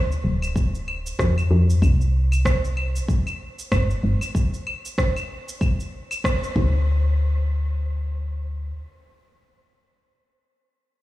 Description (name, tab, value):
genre	organic downtempo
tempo	95 BPM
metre	4/4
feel	swing 57% on 16ths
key	unclear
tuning	A4 = 438 Hz
part	woody FM bass	bass	0.0-8.7 s	D1 to F2	-20 LUFS	equal	sidechain pumping
part	electronic shaker, claves and rim click	drums	0.1-6.5 s	none	-29 LUFS	right 1 dB	none
part	electronic kick drum	drums	0.6-6.7 s	none	-22 LUFS	equal	none
room	light reverb, digital ambience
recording	played on a big sound system in a bare room, stone room reverb, small room reverb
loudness	-20 LUFS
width	side -16 dB against mid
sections	0.0-6.9 A section; 6.9-9.4 B section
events	band accent 6.2-6.6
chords	none